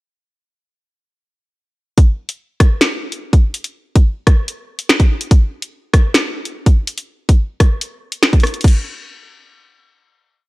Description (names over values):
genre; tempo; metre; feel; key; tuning
hip hop; 144 BPM; 4/4; half-time; none; none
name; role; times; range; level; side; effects
drill drum kit; drums; 2.0-8.7 s; crash cymbal, finger snaps, hi-hat, kick drum, rim click, snare drum; -11 LUFS; equal; none
room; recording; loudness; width
digital ambience; dry, gritty hardware recording, transformer saturation, cassette tape; -13 LUFS; side -21 dB against mid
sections
2.0-8.6 hook; 8.6-10.5 final hit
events
none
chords
none